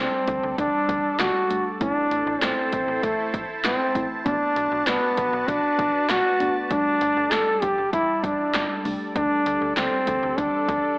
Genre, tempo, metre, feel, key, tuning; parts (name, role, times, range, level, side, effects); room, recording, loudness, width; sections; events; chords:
synth-pop; 98 BPM; 4/4; straight; D mixolydian; A4 = 440 Hz
warm trombone; melody; 0.0-11.0 s; A3 to A4; -22 LUFS; equal
muted felt-like synth keys; accompaniment; 0.0-9.9 s; G3 to E4; -32 LUFS; equal; chorus
phased analog pad; sustained chords; 0.0-11.0 s; G3 to A5; -30 LUFS; equal; phaser, chorus
slap-like FM bass; bass; 0.0-10.8 s; F#1 to D2; -35 LUFS; equal
punchy analog drum machine; drums; 0.3-10.8 s; handclaps, hi-hat, kick drum, snare drum; -28 LUFS; equal; overdrive, gated reverb
moderate spring reverb, RT60 1.9 s; AM radio sound; -20 LUFS; side -24 dB against mid
0.0-11.0 A section
0.0 Dsus4; 1.8 Am; 4.3 Bm7; 6.7 Gsus2; 9.2 Dsus4